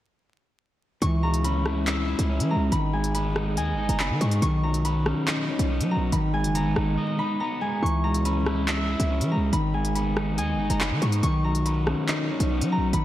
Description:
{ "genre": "hip hop, drill", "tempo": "141 BPM", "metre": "4/4", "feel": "half-time", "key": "G# minor", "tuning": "A4 = 436 Hz", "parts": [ { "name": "concert harp", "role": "melody", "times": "1.0-13.0 s", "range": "G#5 to C#6", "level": "-31 LUFS", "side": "equal", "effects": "analog delay" }, { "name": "electric guitar at the edge of break-up", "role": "accompaniment", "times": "1.0-13.0 s", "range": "D#3 to E5", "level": "-26 LUFS", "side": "equal", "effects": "lush chorus" }, { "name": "hard-hitting 808-style bass", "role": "bass", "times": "1.0-13.0 s", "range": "F#1 to F#3", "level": "-26 LUFS", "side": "equal", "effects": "none" }, { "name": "drill drum kit", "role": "drums", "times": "1.0-13.0 s", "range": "handclaps, hi-hat, rim click", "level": "-30 LUFS", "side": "equal", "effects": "none" } ], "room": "moderate lush hall reverb, RT60 1.8 s, digital ambience", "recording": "dreamy mix soaked in reverb, vinyl crackle", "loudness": "-22 LUFS", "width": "side -13 dB against mid", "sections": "1.0-13.0 A section", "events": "break 7.0-7.8", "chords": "1.0 C#m; 2.7 G#m; 4.4 Badd9; 6.1 G#m; 7.8 C#m; 9.5 G#m; 11.2 Badd9" }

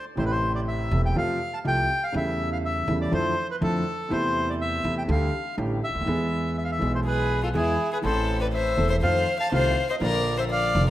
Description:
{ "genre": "tango", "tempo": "122 BPM", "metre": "4/4", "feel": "rubato", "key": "A minor", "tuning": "A4 = 441 Hz", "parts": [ { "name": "bandoneon", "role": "melody", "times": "0.0-10.9 s", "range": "G#4 to A5", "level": "-28 LUFS", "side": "equal", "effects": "none" }, { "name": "warm concert grand piano", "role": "accompaniment", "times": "0.2-10.9 s", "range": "E1 to A4", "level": "-27 LUFS", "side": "equal", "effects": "none" }, { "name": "upright bass", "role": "bass", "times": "0.2-10.9 s", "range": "E1 to F2", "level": "-28 LUFS", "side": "right 1 dB", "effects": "none" }, { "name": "warm violin", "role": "second line", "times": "7.1-10.9 s", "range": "E4 to F5", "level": "-26 LUFS", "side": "left 3 dB", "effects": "none" } ], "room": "moderate lush hall reverb, RT60 2.1 s", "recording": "rough home demo mix", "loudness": "-22 LUFS", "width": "side -14 dB against mid", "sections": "0.2-10.9 A section", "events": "none", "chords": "0.2 Am; 1.2 F; 2.1 A7/E; 3.1 Dmadd9/F; 4.1 Am/E; 5.1 Dsus4; 6.1 E; 8.0 Am; 9.0 F7; 10.0 Bb" }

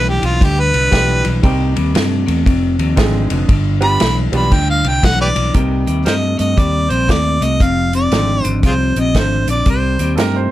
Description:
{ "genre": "electric blues shuffle", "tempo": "117 BPM", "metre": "4/4", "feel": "swing 64% on 8ths", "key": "C minor", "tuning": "A4 = 440 Hz", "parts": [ { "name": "mellow harmonica", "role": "melody", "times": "0.0-10.2 s", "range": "F4 to B5", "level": "-18 LUFS", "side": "equal", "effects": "none" }, { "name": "electric guitar through a small old amp", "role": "riff", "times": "0.0-10.5 s", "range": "F2 to A3", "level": "-19 LUFS", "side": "left 1 dB", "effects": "none" }, { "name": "fingered electric bass", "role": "bass", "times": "0.0-10.5 s", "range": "F1 to G2", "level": "-17 LUFS", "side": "equal", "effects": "none" }, { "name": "vintage drum kit", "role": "drums", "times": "0.2-10.3 s", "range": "hi-hat, kick drum, ride cymbal, snare drum", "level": "-18 LUFS", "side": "equal", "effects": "none" }, { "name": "warm concert grand piano", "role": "accompaniment", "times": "0.9-10.5 s", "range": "G3 to Ab4", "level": "-24 LUFS", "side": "right 5 dB", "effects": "none" }, { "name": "bright upright piano", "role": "second line", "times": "10.2-10.5 s", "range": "A4 to C5", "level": "-21 LUFS", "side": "right 6 dB", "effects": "none" } ], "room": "little or no reverb", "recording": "none", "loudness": "-12 LUFS", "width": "side -14 dB against mid", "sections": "0.0-5.5 A section; 5.5-10.5 B section", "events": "harmonica solo 0.0-5.5", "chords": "0.0 G7; 1.4 Cm7; 2.5 Fm7; 3.5 G7; 5.5 Cm7; 7.6 Fm7; 9.7 Cm7" }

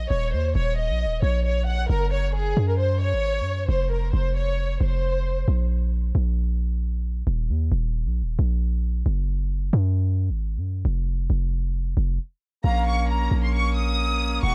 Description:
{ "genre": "hip hop", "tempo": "134 BPM", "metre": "4/4", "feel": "half-time", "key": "Bb minor", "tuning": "A4 = 445 Hz", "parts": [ { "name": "dark studio violin section", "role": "melody", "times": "0.0-5.4, 12.6-14.5 s", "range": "Ab4 to Eb6", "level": "-30 LUFS", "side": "equal", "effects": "none" }, { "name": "warm 808-style bass", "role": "bass", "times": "0.0-14.5 s", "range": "Eb1 to Gb2", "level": "-25 LUFS", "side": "equal", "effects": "none" }, { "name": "breathy concert flute", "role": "second line", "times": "12.6-14.5 s", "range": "F5 to Gb5", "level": "-32 LUFS", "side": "equal", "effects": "none" }, { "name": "pipe organ, full organ", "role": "sustained chords", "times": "12.6-14.5 s", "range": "Eb3 to Gb4", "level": "-33 LUFS", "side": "equal", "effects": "none" } ], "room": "small room ambience", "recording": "dark, warm production", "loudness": "-24 LUFS", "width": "mono", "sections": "0.0-12.6 A section; 12.6-14.5 B section", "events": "stop 12.2-12.6", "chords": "0.1 Eb5; 1.9 Gbsus2; 3.7 F5; 5.5 N.C.; 7.3 Eb5; 9.1 Gbsus2; 10.9 N.C.; 12.6 Bbm" }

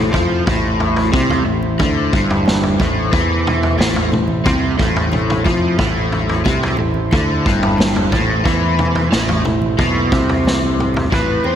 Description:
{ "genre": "psychedelic rock", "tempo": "90 BPM", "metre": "4/4", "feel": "straight", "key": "A minor", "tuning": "A4 = 439 Hz", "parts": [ { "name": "combo organ", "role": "sustained chords", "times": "0.0-11.1 s", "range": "A3 to C5", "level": "-24 LUFS", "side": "right 2 dB", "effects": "none" }, { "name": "overdriven electric guitar", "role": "riff", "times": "0.0-11.6 s", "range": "G2 to C4", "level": "-18 LUFS", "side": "left 1 dB", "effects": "rotary speaker" }, { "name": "picked electric bass", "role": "bass", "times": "0.0-11.6 s", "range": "G1 to F2", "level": "-21 LUFS", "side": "equal", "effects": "none" }, { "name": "vintage drum kit", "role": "drums", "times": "0.1-11.3 s", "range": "kick drum, snare drum, toms", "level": "-19 LUFS", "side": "equal", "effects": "none" }, { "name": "congas", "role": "percussion", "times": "0.1-11.6 s", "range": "none", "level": "-30 LUFS", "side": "right 3 dB", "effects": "none" }, { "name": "overdriven synth lead", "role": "melody", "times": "11.1-11.6 s", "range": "B4 to C5", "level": "-19 LUFS", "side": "left 2 dB", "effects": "distortion, diffuse ambient delay" } ], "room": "moderate lush hall reverb, RT60 2.8 s", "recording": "dreamy mix soaked in reverb", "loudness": "-14 LUFS", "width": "side -9 dB against mid", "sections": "0.0-11.1 A section", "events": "drum fill 10.5-11.1", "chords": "0.0 Am" }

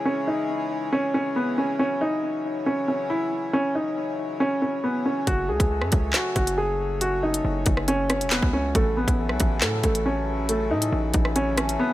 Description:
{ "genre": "hip hop, drill", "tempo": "138 BPM", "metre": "4/4", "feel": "half-time", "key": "C# minor", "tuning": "A4 = 440 Hz", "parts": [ { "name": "dark upright piano", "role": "melody", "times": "0.0-11.9 s", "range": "A3 to G#4", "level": "-24 LUFS", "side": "equal", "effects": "ping-pong delay" }, { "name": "hand-pumped harmonium", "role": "sustained chords", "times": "0.0-11.9 s", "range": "C#3 to C#4", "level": "-32 LUFS", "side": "left 3 dB", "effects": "none" }, { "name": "distorted 808-style bass", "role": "bass", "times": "5.3-11.8 s", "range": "E1 to A2", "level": "-27 LUFS", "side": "equal", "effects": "distortion" }, { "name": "drill drum kit", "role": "drums", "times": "5.3-11.8 s", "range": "handclaps, hi-hat, kick drum, rim click, snare drum", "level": "-23 LUFS", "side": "equal", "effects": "none" } ], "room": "small room ambience", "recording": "none", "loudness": "-22 LUFS", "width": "side -15 dB against mid", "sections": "0.0-11.9 A section", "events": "none", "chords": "0.0 C#m; 5.3 F#m; 8.8 A6" }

